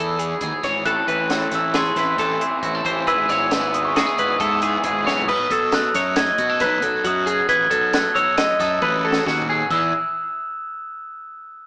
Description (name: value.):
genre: math rock and midwest emo.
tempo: 136 BPM.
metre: 5/4.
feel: straight.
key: unclear.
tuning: A4 = 440 Hz.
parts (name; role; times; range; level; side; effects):
glockenspiel with rubber mallets; melody; 0.0-9.9 s; B5 to G#6; -21 LUFS; equal; none.
twangy electric guitar; accompaniment; 0.0-9.9 s; E2 to A4; -27 LUFS; right 1 dB; none.
twelve-string electric guitar; arpeggios; 0.0-9.9 s; E4 to D#5; -22 LUFS; left 1 dB; none.
fuzz fingered electric bass; bass; 0.0-9.9 s; G#1 to B2; -28 LUFS; equal; overdrive.
compact cocktail drum kit; drums; 0.2-9.8 s; crash cymbal, hi-hat, kick drum, snare drum, toms; -25 LUFS; equal; none.
raw garage guitar; riff; 0.9-5.3 s; G#2 to E4; -26 LUFS; equal; overdrive.
room: moderate stone room reverb, RT60 1.5 s.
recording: band playing live in one room, small speaker sound.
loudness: -17 LUFS.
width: side -26 dB against mid.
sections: 0.0-5.3 A section; 5.3-9.7 B section; 9.7-11.7 C section.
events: drum fill 5.1, 8.8-9.7.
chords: 0.0 Emaj7; 0.9 Amadd9; 3.1 E/G#; 5.3 B7; 9.7 N.C..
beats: 0.42 | 0.86 1.31 1.75 2.19 2.64 | 3.08 3.52 3.97 4.41 4.85 | 5.29 5.74 6.18 6.62 7.06 | 7.50 7.94 8.38 8.83 9.27 | 9.71.